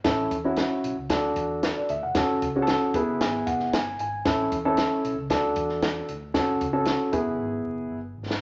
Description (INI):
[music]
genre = uptempo 1960s-style soul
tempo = 114 BPM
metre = 4/4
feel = straight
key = A major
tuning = A4 = 436 Hz
[part]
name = dark upright piano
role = accompaniment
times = 0.0-8.0 s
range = B3 to G#5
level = -27 LUFS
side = equal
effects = none
[part]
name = vintage muted fingered electric bass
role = bass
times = 0.0-8.4 s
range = E1 to E2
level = -41 LUFS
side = equal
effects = none
[part]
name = compact cocktail drum kit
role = drums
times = 0.0-8.4 s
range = hi-hat, kick drum, snare drum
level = -31 LUFS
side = equal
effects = none
[sound]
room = moderate large studio reverb, RT60 1.1 s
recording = vinyl crackle, nothing above 7.7 kHz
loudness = -26 LUFS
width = mono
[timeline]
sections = 0.0-8.4 A section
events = upright piano fill 2.7-4.3; drum fill 7.4-8.4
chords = 0.0 A; 1.1 D; 2.2 F#m; 2.9 E; 4.3 A; 5.3 D; 6.3 F#m; 7.1 E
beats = | 0.05 0.57 1.10 1.62 | 2.15 2.68 3.20 3.73 | 4.25 4.78 5.30 5.82 | 6.35 6.87 7.39 7.92